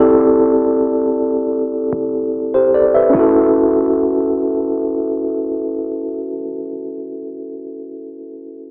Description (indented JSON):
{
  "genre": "contemporary R&B",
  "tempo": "74 BPM",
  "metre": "4/4",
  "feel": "straight",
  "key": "D major",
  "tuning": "A4 = 440 Hz",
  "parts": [
    { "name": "mellow tine electric piano", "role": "accompaniment", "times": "0.0-8.7 s", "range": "C4 to E5", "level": "-17 LUFS", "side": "equal", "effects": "cassette tape" },
    { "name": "clean 808-style bass", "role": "bass", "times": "0.0-6.4 s", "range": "F1 to D2", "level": "-33 LUFS", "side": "equal", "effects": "none" }
  ],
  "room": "moderate small room reverb, RT60 0.5 s",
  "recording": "home recording on cassette, small speaker sound",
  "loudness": "-16 LUFS",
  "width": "mono",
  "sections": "0.0-3.1 A section; 3.1-6.4 B section",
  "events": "none",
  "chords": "0.0 Fmaj9; 3.1 Dmaj9"
}